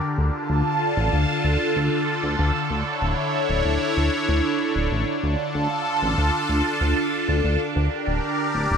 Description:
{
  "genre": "synthwave",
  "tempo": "95 BPM",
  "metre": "4/4",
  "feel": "straight",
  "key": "D harmonic minor",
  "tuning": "A4 = 439 Hz",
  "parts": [
    { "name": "phased analog pad", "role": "sustained chords", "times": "0.0-8.8 s", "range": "D3 to A5", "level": "-22 LUFS", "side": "equal", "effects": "phaser, chorus" },
    { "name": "chorused synth bass", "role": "bass", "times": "0.2-8.8 s", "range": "D1 to D2", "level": "-23 LUFS", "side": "equal", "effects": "none" }
  ],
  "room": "moderate plate reverb, RT60 3.3 s",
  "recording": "bright 1980s-style digital production",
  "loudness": "-20 LUFS",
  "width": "side -6 dB against mid",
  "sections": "0.0-8.8 A section",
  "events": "none",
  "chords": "0.0 Dm; 2.5 A/D; 5.1 Dm; 7.6 Gm/D"
}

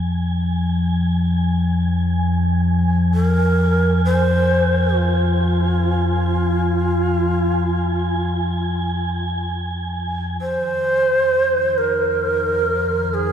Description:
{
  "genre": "dark ambient drone",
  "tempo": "free time",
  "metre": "none",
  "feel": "none",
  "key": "F minor",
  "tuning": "A4 = 439 Hz",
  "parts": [
    { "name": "deep rumbling drone", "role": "drone", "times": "0.0-13.3 s", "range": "F2 to F3", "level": "-19 LUFS", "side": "left 1 dB", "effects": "built-in reverb" },
    { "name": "wind-like tuned noise texture", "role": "texture", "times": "0.0-13.3 s", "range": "Ab5 to C6", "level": "-29 LUFS", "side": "right 2 dB", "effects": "built-in reverb, ensemble chorus" },
    { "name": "breathy long shakuhachi", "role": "melody", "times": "3.1-13.3 s", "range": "F4 to C5", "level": "-19 LUFS", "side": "right 1 dB", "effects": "diffuse ambient delay" },
    { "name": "sweeping resonant pad", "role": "sustained chords", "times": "10.4-13.3 s", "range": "Eb3 to F3", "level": "-34 LUFS", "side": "right 3 dB", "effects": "chorus" }
  ],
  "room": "wet cathedral reverb, RT60 4.6 s",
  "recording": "dreamy mix soaked in reverb",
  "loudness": "-16 LUFS",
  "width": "side -9 dB against mid",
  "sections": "0.0-10.4 A section; 10.4-13.3 B section",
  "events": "fade-in on synth texture 0.0-10.4",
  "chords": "0.0 Fm; 10.4 F5"
}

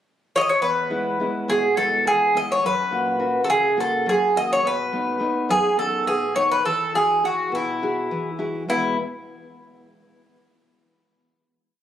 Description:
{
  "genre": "greek folk, Greek bouzouki band",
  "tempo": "208 BPM (eighths)",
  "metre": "7/8",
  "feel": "straight",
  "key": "E major",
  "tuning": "A4 = 440 Hz",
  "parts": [
    { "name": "Greek bouzouki", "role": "melody", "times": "0.4-9.0 s", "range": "E4 to D#5", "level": "-20 LUFS", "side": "equal", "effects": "none" },
    { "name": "nylon-string guitar", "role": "accompaniment", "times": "0.6-9.0 s", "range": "E2 to G#4", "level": "-26 LUFS", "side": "left 1 dB", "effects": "none" }
  ],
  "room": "light reverb",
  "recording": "recorded on a phone in the room, club reverb",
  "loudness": "-19 LUFS",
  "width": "side -10 dB against mid",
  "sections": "0.0-0.6 pickup bar; 0.6-8.7 A section; 8.7-10.7 final chord",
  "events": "none",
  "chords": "0.0 N.C.; 0.6 E; 2.6 F#; 4.7 B7; 6.7 Eadd9; 8.7 E"
}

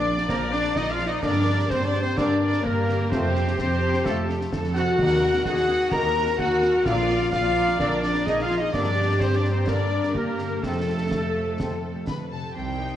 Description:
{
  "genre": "cinematic, heroic adventure film score",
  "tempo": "128 BPM",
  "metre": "4/4",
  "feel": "straight",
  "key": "unclear",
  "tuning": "A4 = 440 Hz",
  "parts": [
    { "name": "rich chamber violin section", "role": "melody", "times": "0.0-13.0 s", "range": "A4 to Cb6", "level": "-36 LUFS", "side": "left 4 dB", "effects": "none" },
    { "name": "clear oboe", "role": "second line", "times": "0.0-13.0 s", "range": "A4 to Bb5", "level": "-36 LUFS", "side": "right 1 dB", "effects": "none" },
    { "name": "hollow concert flute", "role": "second line", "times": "0.0-12.0 s", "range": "A4 to Bb5", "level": "-32 LUFS", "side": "left 2 dB", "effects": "none" },
    { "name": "rich symphonic violin section", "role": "second line", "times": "0.0-13.0 s", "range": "G4 to Bb5", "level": "-37 LUFS", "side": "left 2 dB", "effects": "none" },
    { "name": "rich symphonic viola section", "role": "accompaniment", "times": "0.0-13.0 s", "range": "Eb3 to D5", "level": "-32 LUFS", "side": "right 1 dB", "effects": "none" },
    { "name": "mellow French horn section", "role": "sustained chords", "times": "0.0-13.0 s", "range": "A3 to C5", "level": "-26 LUFS", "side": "left 3 dB", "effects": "none" },
    { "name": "concert harp", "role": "arpeggios", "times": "0.0-13.0 s", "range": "F2 to F6", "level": "-35 LUFS", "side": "left 5 dB", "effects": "none" },
    { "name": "bright trumpet", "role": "stabs", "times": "0.0-12.1 s", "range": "A4 to Bb5", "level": "-31 LUFS", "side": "right 1 dB", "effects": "none" },
    { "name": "clear symphonic cello section", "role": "bass", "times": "0.0-13.0 s", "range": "C3 to Bb4", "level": "-31 LUFS", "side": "right 2 dB", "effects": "none" },
    { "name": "rich symphonic double bass section", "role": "bass", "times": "0.0-13.0 s", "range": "Bb1 to G2", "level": "-28 LUFS", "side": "right 2 dB", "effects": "none" },
    { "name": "concert snare drum, concert bass drum and clash cymbals", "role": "drums", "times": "0.2-12.3 s", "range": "none", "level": "-33 LUFS", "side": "right 1 dB", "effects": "none" },
    { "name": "warm trombone section", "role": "sustained chords", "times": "0.3-13.0 s", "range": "C3 to C4", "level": "-36 LUFS", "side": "right 2 dB", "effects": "none" },
    { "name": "timpani", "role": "percussion", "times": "5.0-7.5 s", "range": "Bb2 to Eb3", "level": "-34 LUFS", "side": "equal", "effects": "none" }
  ],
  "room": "wet scoring stage reverb, RT60 1.5 s",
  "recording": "worn, warbling old tape, cassette tape, warbly pitch drift, nothing above 10.8 kHz",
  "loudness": "-21 LUFS",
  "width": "side -11 dB against mid",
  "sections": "0.0-12.6 A section",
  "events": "none",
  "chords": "0.0 Bb; 1.2 Gm; 3.1 F; 5.0 Ebm; 6.9 Bb; 8.7 Gm; 10.6 F"
}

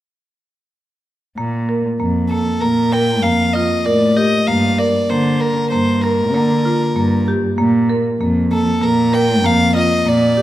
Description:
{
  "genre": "contemporary instrumental, contemporary",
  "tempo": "97 BPM",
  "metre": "5/4",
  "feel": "straight",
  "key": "unclear",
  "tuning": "A4 = 440 Hz",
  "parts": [
    { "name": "marimba with medium hard mallets", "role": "arpeggios", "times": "1.4-10.4 s", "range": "Bb3 to Bb4", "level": "-17 LUFS", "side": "right 2 dB", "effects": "none" },
    { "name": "dark cello", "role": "bass", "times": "1.4-10.4 s", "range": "F2 to D3", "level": "-19 LUFS", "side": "left 1 dB", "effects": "none" },
    { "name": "rich violin", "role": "melody", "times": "2.3-10.4 s", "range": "A4 to G5", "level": "-18 LUFS", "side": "left 1 dB", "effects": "none" }
  ],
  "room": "light reverb",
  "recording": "none",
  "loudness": "-13 LUFS",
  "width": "side -14 dB against mid",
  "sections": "1.4-10.4 A section",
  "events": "none",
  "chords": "1.4 Bb5; 4.5 Gm; 7.6 Bb5"
}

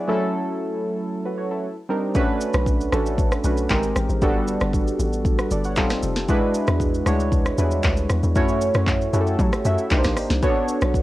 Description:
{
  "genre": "amapiano",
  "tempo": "116 BPM",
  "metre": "4/4",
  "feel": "straight",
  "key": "B minor",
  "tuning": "A4 = 440 Hz",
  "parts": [
    { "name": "warm analog keys", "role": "accompaniment", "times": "0.0-11.0 s", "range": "F#3 to F#5", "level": "-22 LUFS", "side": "right 1 dB", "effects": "chorus, cassette tape" },
    { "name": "afro-pop drum kit", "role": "drums", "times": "2.1-11.0 s", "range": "handclaps, hi-hat, kick drum, rim click, shaker, snare drum", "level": "-23 LUFS", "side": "equal", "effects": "cassette tape" },
    { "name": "hollow log drum bass", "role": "bass", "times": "2.5-11.0 s", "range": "F1 to F#3", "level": "-23 LUFS", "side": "equal", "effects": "none" }
  ],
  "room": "light reverb",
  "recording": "home recording on cassette",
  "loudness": "-19 LUFS",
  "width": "side -16 dB against mid",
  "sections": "0.0-2.1 A section; 2.1-11.0 B section",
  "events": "break 0.1-2.1; drop 2.1-11.0",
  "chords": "0.1 F#m7; 1.6 Cm9; 2.1 Bm9; 3.7 G#maj7; 4.2 Gmaj7; 5.8 F9; 6.3 E9; 8.4 F#m7; 9.9 Cm9; 10.4 Bm9"
}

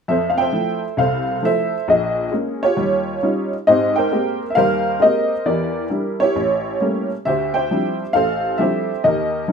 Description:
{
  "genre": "solo jazz",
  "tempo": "134 BPM",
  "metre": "4/4",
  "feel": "swing 66% on 8ths",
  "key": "F major",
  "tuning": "A4 = 440 Hz",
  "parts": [
    { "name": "honky-tonk upright piano", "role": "solo", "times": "0.1-9.5 s", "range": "A1 to G5", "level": "-16 LUFS", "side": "equal", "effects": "none" }
  ],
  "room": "moderate studio reverb, RT60 0.7 s",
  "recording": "minimal, uncompressed stereo recording",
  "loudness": "-16 LUFS",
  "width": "side -6 dB against mid",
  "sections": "0.1-9.5 A section",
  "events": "none",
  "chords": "0.1 Fmaj7; 1.9 Bbm7; 2.8 Eb9; 3.7 Abmaj9; 5.5 Em7b5; 6.4 A7b9; 7.2 Dm11"
}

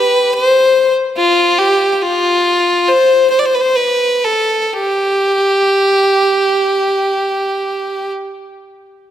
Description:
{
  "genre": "celtic folk",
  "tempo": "44-73 BPM",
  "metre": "4/4",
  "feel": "rubato",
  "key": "G mixolydian",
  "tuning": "A4 = 440 Hz",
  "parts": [
    { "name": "clear fiddle", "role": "solo", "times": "0.0-8.1 s", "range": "F4 to D5", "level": "-11 LUFS", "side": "equal", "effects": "none" }
  ],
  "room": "moderate church reverb, RT60 2.6 s",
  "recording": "none",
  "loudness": "-11 LUFS",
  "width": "side -10 dB against mid",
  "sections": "0.0-9.1 A section",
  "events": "slowing down 1.1-9.1",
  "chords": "none"
}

